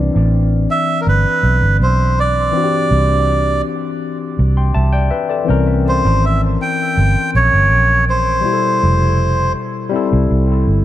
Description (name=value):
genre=lovers rock reggae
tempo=81 BPM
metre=4/4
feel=straight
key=C major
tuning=A4 = 440 Hz
part: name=barky tine electric piano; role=accompaniment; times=0.0-10.8 s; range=B2 to C6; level=-19 LUFS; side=left 5 dB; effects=auto-pan, dub echo
part: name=vintage muted fingered electric bass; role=bass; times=0.0-10.8 s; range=F1 to C2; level=-14 LUFS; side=right 1 dB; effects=none
part: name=melodica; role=melody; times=0.7-9.5 s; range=Bb4 to G5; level=-17 LUFS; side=right 2 dB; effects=dub echo
room=light reverb, small room ambience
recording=none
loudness=-12 LUFS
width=side -13 dB against mid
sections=0.0-10.8 A section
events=none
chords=0.0 Cmaj9; 5.5 C7b9; 8.4 Fmaj9#11; 9.9 C6